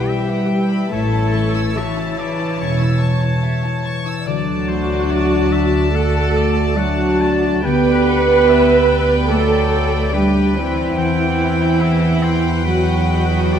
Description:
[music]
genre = cinematic, emotional film score for orchestra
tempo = 72 BPM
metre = 4/4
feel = rubato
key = G major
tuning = A4 = 440 Hz
[part]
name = rich studio violin section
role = melody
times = 0.0-13.6 s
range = G5 to A5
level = -28 LUFS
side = left 4 dB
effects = none
[part]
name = bright oboe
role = second line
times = 0.0-13.6 s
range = B4 to A5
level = -28 LUFS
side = right 1 dB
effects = none
[part]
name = warm symphonic violin section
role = second line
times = 0.0-13.6 s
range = B4 to E6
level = -28 LUFS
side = left 3 dB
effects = none
[part]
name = dark symphonic viola section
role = accompaniment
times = 0.0-13.6 s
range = E4 to B4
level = -19 LUFS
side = right 2 dB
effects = none
[part]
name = warm French horn section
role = sustained chords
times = 0.0-13.6 s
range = B2 to G4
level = -24 LUFS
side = left 5 dB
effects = none
[part]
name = concert harp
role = arpeggios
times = 0.0-13.6 s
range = A2 to E5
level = -27 LUFS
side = left 10 dB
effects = none
[part]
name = warm symphonic cello section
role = bass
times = 0.0-13.6 s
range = E3 to B3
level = -21 LUFS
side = right 3 dB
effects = none
[part]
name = rich chamber double bass section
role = bass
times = 0.9-13.6 s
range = E1 to E2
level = -20 LUFS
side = right 2 dB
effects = none
[sound]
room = moderate scoring stage reverb, RT60 1.7 s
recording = none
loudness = -14 LUFS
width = side -8 dB against mid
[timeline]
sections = 0.0-13.6 A section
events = none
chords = 0.0 Emadd9; 0.9 A; 4.3 D; 7.6 G/D; 11.0 Emadd9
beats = 0.08 | 0.93 1.77 2.60 3.44 | 4.27 5.11 5.94 6.77 | 7.65 8.49 9.31 10.14 | 10.98 11.81 12.66 13.53

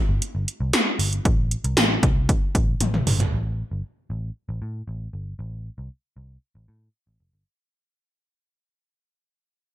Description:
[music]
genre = 1980s-style pop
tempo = 116 BPM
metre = 4/4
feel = straight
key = A minor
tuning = A4 = 440 Hz
[part]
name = vintage muted picked electric bass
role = bass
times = 0.1-7.4 s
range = F1 to A2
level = -26 LUFS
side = equal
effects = none
[part]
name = 80s electronic pad drums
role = drums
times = 0.2-3.3 s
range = hi-hat, kick drum, snare drum, tambourine, toms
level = -20 LUFS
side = equal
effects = gated reverb on snare and toms, gated reverb
[sound]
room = light reverb, digital ambience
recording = bright 1980s-style digital production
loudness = -21 LUFS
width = side -13 dB against mid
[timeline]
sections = 0.0-3.3 A section; 3.3-7.5 B section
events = drum fill 2.8-3.3; fade-out 3.3-7.5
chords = none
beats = 0.22 0.73 | 1.25 1.77 2.29 2.80 | 3.32 3.84 4.36 4.87 | 5.39 5.91 6.42 6.94

